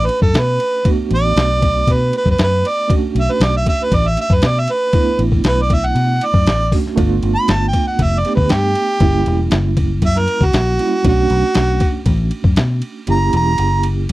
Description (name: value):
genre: straight-eighth soul blues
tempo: 118 BPM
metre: 4/4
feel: straight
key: B minor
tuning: A4 = 445 Hz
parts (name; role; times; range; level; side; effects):
- warm harmonica; melody; 0.0-13.8 s; F#4 to B5; -17 LUFS; right 2 dB; overdrive
- reed electric piano; accompaniment; 0.0-14.1 s; G3 to G4; -22 LUFS; right 5 dB; fast tremolo
- vintage muted fingered electric bass; bass; 0.0-14.1 s; E1 to B2; -17 LUFS; left 1 dB; none
- boom bap sampler-style drum kit; drums; 0.1-14.1 s; hi-hat, kick drum, ride cymbal, snare drum; -17 LUFS; left 1 dB; none
room: little or no reverb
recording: dry, close 1970s-style studio recording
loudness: -13 LUFS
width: side -17 dB against mid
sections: 0.0-14.1 A section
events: harmonica solo 0.0-14.1; kick and snare drop out 13.1-14.1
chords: 0.0 Bm9; 7.0 G7; 9.0 F#7b9; 11.0 Bm9; 13.1 F#7b9